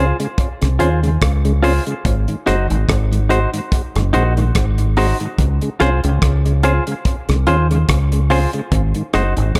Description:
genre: roots reggae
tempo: 72 BPM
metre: 4/4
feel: swing 56% on 16ths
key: Db major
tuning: A4 = 442 Hz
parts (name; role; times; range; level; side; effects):
- mellow tonewheel organ; accompaniment; 0.0-9.4 s; Ab2 to Gb4; -26 LUFS; equal; slow rotary speaker, dub echo
- semi-hollow electric guitar; accompaniment; 0.0-9.3 s; Eb4 to C5; -24 LUFS; equal; tape echo
- deep dub fingered electric bass; bass; 0.0-9.6 s; Gb1 to Eb2; -18 LUFS; equal; none
- damped 70s drum kit; drums; 0.2-9.6 s; hi-hat, kick drum, rim click; -23 LUFS; equal; dub echo
room: light reverb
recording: echo-heavy mix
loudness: -17 LUFS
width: mono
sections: 0.0-9.6 A section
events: none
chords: 0.0 Dbmaj7; 2.0 Ab7; 5.4 Dbmaj7; 8.7 Ab7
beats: 0.38 1.22 | 2.05 2.88 3.72 4.55 | 5.38 6.22 7.05 7.88 | 8.72 9.55

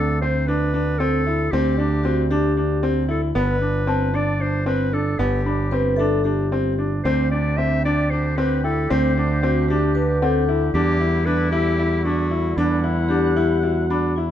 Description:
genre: contemporary instrumental, chamber music in an uneven meter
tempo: 228 BPM (eighths)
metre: 7/8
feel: straight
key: unclear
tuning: A4 = 440 Hz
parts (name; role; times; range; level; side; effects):
- clear clarinet; melody; 0.0-13.9 s; E4 to E5; -26 LUFS; left 2 dB; none
- clear baby grand piano; arpeggios; 0.0-14.3 s; B3 to E4; -23 LUFS; equal; none
- growling fingered electric bass; bass; 0.0-14.3 s; G1 to E2; -22 LUFS; right 1 dB; overdrive
- celesta; texture; 0.0-11.0, 13.9-14.3 s; C4 to B5; -33 LUFS; left 7 dB; none
- vibraphone with medium mallets; second line; 2.0-2.9, 5.7-14.3 s; E4 to B4; -23 LUFS; left 4 dB; none
- warm woodwind section; sustained chords; 7.0-14.3 s; D3 to F#5; -30 LUFS; equal; none
room: light reverb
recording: close, detailed microphones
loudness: -18 LUFS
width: side -10 dB against mid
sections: 0.0-14.3 A section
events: none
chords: 0.0 D7sus4; 3.3 G; 7.0 D7sus4; 10.7 Em7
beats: 0.22 0.48 0.74 1.01 1.27 | 1.53 1.79 2.05 2.31 2.57 2.83 3.09 | 3.35 3.61 3.87 4.14 4.40 4.66 4.93 | 5.19 5.45 5.72 5.98 6.24 6.51 6.78 | 7.04 7.31 7.58 7.84 8.11 8.37 8.64 | 8.90 9.17 9.43 9.69 9.96 10.22 10.48 | 10.74 11.00 11.26 11.52 11.78 12.04 12.30 | 12.57 12.83 13.10 13.37 13.63 13.90 14.17

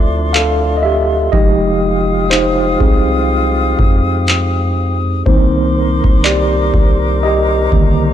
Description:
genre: contemporary R&B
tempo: 61 BPM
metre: 4/4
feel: swing 58% on 16ths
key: unclear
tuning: A4 = 440 Hz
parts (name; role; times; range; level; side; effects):
- mellow tine electric piano; accompaniment; 0.0-8.1 s; D3 to F5; -15 LUFS; right 1 dB; medium stereo tremolo
- breathy small flute group; sustained chords; 0.0-8.1 s; D4 to Eb6; -20 LUFS; left 4 dB; none
- long sustained 808-style bass; bass; 0.0-8.1 s; F1 to F2; -17 LUFS; equal; none
- booming analog drum machine; drums; 0.3-7.9 s; handclaps, kick drum; -13 LUFS; equal; none
room: little or no reverb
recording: dry, gritty hardware recording, transformer saturation, lossy compression artefacts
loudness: -11 LUFS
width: side -10 dB against mid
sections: 0.0-8.1 A section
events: tine electric piano solo 0.0-8.1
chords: 0.0 Dm9; 1.3 Fm9; 5.3 Cm9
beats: 0.35 | 1.33 2.31 3.30 4.28 | 5.26 6.25 7.23

